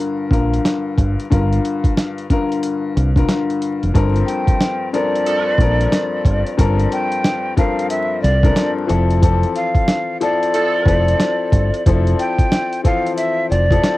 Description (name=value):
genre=hip hop, boom-bap hip-hop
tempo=91 BPM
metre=4/4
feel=swing 62% on 16ths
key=G dorian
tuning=A4 = 440 Hz
part: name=warm upright piano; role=accompaniment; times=0.0-14.0 s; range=G2 to Bb4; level=-20 LUFS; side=left 4 dB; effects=high-pass filter, low-pass filter, cassette tape
part: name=deep dub fingered electric bass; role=bass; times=0.3-13.8 s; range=F1 to C2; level=-16 LUFS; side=equal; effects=none
part: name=dusty soul sampler-style drum kit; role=drums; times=0.3-14.0 s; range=hi-hat, kick drum, snare drum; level=-16 LUFS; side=equal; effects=cassette tape
part: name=breathy mellow jazz flute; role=melody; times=4.3-14.0 s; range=D5 to G5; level=-20 LUFS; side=equal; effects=high-pass filter, low-pass filter, cassette tape, tape echo
part: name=warm horn section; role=stabs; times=5.3-5.5, 10.5-11.0 s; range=F3 to A4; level=-27 LUFS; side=right 6 dB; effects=high-pass filter, low-pass filter, cassette tape, tape echo
room=light reverb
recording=home recording on cassette, vinyl crackle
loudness=-14 LUFS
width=side -17 dB against mid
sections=0.0-3.9 A section; 3.9-14.0 B section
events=none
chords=0.0 Gm7; 3.9 Gm11; 8.9 Dm9/F